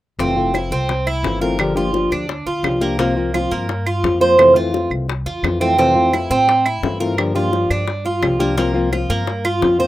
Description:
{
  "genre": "latin, Cuban son and guajira",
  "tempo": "172 BPM",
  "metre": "4/4",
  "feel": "straight",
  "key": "F major",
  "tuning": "A4 = 440 Hz",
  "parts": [
    { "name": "nylon-string guitar", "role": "accompaniment", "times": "0.2-9.9 s", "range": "C3 to G4", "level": "-20 LUFS", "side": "left 3 dB", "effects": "none" },
    { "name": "Cuban tres", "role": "arpeggios", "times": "0.2-9.9 s", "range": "Bb3 to C5", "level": "-17 LUFS", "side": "right 2 dB", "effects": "none" },
    { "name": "upright bass", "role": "bass", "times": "0.2-9.9 s", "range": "F1 to A2", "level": "-24 LUFS", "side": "equal", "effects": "none" },
    { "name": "bongos", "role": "percussion", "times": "0.2-9.8 s", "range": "none", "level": "-26 LUFS", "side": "left 8 dB", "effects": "none" },
    { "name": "claves", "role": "percussion", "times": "0.5-9.6 s", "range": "none", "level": "-23 LUFS", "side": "right 3 dB", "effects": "none" }
  ],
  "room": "light reverb",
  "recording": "rough home demo mix",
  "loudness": "-15 LUFS",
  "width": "side -15 dB against mid",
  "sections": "0.2-9.9 A section",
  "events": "none",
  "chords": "0.2 Fmaj7; 1.6 Gm7; 3.0 C7sus4; 4.4 Fmaj7; 7.2 Gm7; 8.6 C7sus4"
}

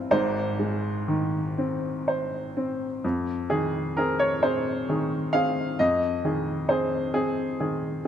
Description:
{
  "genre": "neoclassical minimalist piano",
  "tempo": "41-45 BPM (dotted quarters)",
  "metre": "6/8",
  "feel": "rubato",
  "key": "F minor",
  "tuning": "A4 = 441 Hz",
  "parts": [
    { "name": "clear upright piano", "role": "solo", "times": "0.0-8.1 s", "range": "Ab1 to F5", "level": "-24 LUFS", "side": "equal", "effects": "none" }
  ],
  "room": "moderate concert hall reverb, RT60 1.8 s",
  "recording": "none",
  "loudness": "-24 LUFS",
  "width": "side -9 dB against mid",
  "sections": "0.0-3.0 A section; 3.0-8.1 B section",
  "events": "none",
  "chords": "0.1 Ab; 3.0 Fm7"
}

